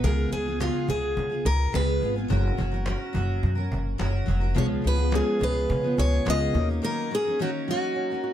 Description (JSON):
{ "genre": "acoustic pop", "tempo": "106 BPM", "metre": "4/4", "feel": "straight", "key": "unclear", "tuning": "A4 = 440 Hz", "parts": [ { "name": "picked steel-string acoustic guitar", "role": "melody", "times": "0.0-8.3 s", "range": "E#4 to D#5", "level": "-27 LUFS", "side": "left 1 dB", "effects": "none" }, { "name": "dark upright piano", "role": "accompaniment", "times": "0.0-0.1, 4.5-8.3 s", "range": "A#3 to C#5", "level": "-37 LUFS", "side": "left 6 dB", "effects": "none" }, { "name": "picked steel-string acoustic guitar", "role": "accompaniment", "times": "0.0-8.3 s", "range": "C#3 to A#4", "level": "-29 LUFS", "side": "equal", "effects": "double-tracked left and right" }, { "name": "nylon-string guitar", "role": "arpeggios", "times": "0.0-0.6, 4.6-8.3 s", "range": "E#3 to G#4", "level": "-35 LUFS", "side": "right 6 dB", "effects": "none" }, { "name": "upright bass", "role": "bass", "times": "0.0-6.8 s", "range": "E#1 to C#3", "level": "-25 LUFS", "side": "equal", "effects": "none" }, { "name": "cajon", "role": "drums", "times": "0.0-6.8 s", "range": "none", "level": "-34 LUFS", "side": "equal", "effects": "none" } ], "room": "little or no reverb", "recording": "none", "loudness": "-23 LUFS", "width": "side -11 dB against mid", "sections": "0.0-8.3 A section", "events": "break 6.8-8.3", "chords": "0.0 C#7; 2.3 F#; 4.6 C#7; 6.5 D#m7", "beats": "| 0.04 0.60 1.17 1.74 | 2.30 2.87 3.44 4.00 | 4.57 5.13 5.70 6.26 | 6.83 7.40 7.96" }